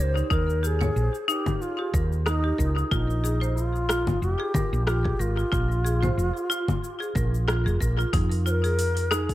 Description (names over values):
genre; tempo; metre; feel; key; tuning
organic downtempo; 92 BPM; 4/4; swing 55% on 16ths; unclear; A4 = 441 Hz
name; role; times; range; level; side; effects
bright bass bansuri; melody; 0.0-9.3 s; Eb4 to C5; -30 LUFS; left 1 dB; dub echo
marimba with hard mallets; arpeggios; 0.0-9.3 s; Eb4 to Db5; -30 LUFS; equal; tape echo
woody fretless electric bass; bass; 0.0-9.3 s; F1 to F2; -24 LUFS; equal; tube saturation
deep house drum kit; drums; 0.2-9.3 s; cabasa, congas, hi-hat, rim click; -30 LUFS; left 2 dB; overdrive, tape echo
electronic kick drum; drums; 0.3-9.3 s; none; -28 LUFS; equal; overdrive
room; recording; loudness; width
light reverb; echo-heavy mix; -22 LUFS; side -15 dB against mid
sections
0.0-8.1 A section; 8.1-9.3 B section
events
none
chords
0.0 Eb7; 2.9 Bbsus2; 8.1 Fm7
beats
| 0.31 0.96 1.61 2.26 | 2.92 3.57 4.22 4.87 | 5.52 6.18 6.83 7.48 | 8.13 8.78